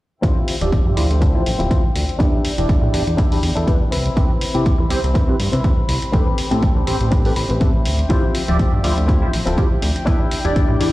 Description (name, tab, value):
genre	filtered disco house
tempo	122 BPM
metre	4/4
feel	swing 55% on 16ths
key	D dorian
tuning	A4 = 440 Hz
part	funky polysynth comp	accompaniment	0.2-10.9 s	F3 to E5	-24 LUFS	equal	chorus, phaser, sidechain pumping, low-pass filter
part	warm chamber string section	sustained chords	0.2-10.9 s	F3 to B5	-29 LUFS	left 1 dB	sidechain pumping, low-pass filter
part	direct-recorded clean electric guitar	riff	0.2-10.8 s	C4 to B5	-26 LUFS	left 2 dB	vintage 12-bit sampler grit, sidechain pumping, low-pass filter
part	fat analog bass	bass	0.2-10.9 s	D1 to C3	-20 LUFS	equal	sidechain pumping, low-pass filter
part	electronic hi-hat	drums	0.2-10.9 s	none	-29 LUFS	left 1 dB	sidechain pumping on hats, studio reverb
part	electronic kick drum	drums	0.2-10.7 s	none	-18 LUFS	equal	studio reverb
room	light reverb, digital ambience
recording	played on a big sound system in a bare room, large studio reverb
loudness	-15 LUFS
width	side -17 dB against mid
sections	0.2-10.9 A section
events	filter sweep 0.2-10.9; clean electric guitar fill 7.1-8.1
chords	0.2 Dm11; 2.2 Em7; 3.9 Cmaj7; 6.1 Am9; 8.1 Dm11; 10.1 Em7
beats	| 0.23 0.72 1.22 1.71 | 2.20 2.69 3.18 3.68 | 4.17 4.66 5.15 5.64 | 6.13 6.63 7.12 7.61 | 8.10 8.59 9.09 9.58 | 10.07 10.56